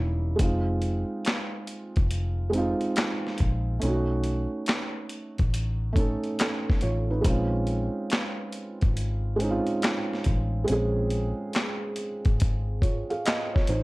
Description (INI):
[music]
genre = lo-fi hip hop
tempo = 70 BPM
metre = 4/4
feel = swing 66% on 16ths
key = Bb minor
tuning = A4 = 440 Hz
[part]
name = felt-muted upright piano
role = accompaniment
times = 0.0-13.8 s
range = G3 to F5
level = -29 LUFS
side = right 2 dB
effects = cassette tape
[part]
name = vintage muted fingered electric bass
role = bass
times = 0.0-13.8 s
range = E1 to B1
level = -27 LUFS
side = equal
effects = none
[part]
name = boom bap sampler-style drum kit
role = drums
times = 0.4-13.8 s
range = handclaps, hi-hat, kick drum, snare drum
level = -26 LUFS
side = equal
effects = none
[sound]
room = little or no reverb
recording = cassette tape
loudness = -24 LUFS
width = side -22 dB against mid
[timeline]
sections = 0.0-13.8 A section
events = break 0.0-0.4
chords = 0.4 Fm7; 3.8 B9; 7.2 Bbm9